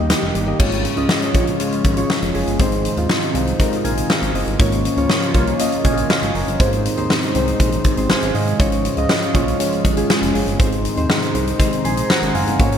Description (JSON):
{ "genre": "1980s-style pop", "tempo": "120 BPM", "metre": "4/4", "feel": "straight", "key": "Ab major", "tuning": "A4 = 440 Hz", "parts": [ { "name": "soft electric-piano-like synth keys", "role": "accompaniment", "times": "0.0-12.8 s", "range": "Ab2 to C6", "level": "-20 LUFS", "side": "equal", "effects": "chorus, phaser" }, { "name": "phased analog pad", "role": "sustained chords", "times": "0.0-12.8 s", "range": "C3 to G4", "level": "-26 LUFS", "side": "equal", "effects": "phaser, chorus" }, { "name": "chorused synth bass", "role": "bass", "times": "0.0-12.8 s", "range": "F1 to Ab2", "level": "-23 LUFS", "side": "equal", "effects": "none" }, { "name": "mellow synth brass", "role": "stabs", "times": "0.1-0.6 s", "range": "Eb3 to G4", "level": "-28 LUFS", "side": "left 1 dB", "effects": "chorus, phaser" }, { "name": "huge arena drum kit", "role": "drums", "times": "0.1-12.8 s", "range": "crash cymbal, hi-hat, kick drum, snare drum", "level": "-19 LUFS", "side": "equal", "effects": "none" } ], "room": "moderate lush hall reverb, RT60 1.9 s, studio reverb", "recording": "bright 1980s-style digital production", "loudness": "-15 LUFS", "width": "side -8 dB against mid", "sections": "0.6-12.8 A section", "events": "none", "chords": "0.0 Eb; 0.6 Db/Ab; 2.6 Ab; 4.6 Bbm/Ab; 6.6 Ab; 8.6 Db/Ab; 10.6 Ab" }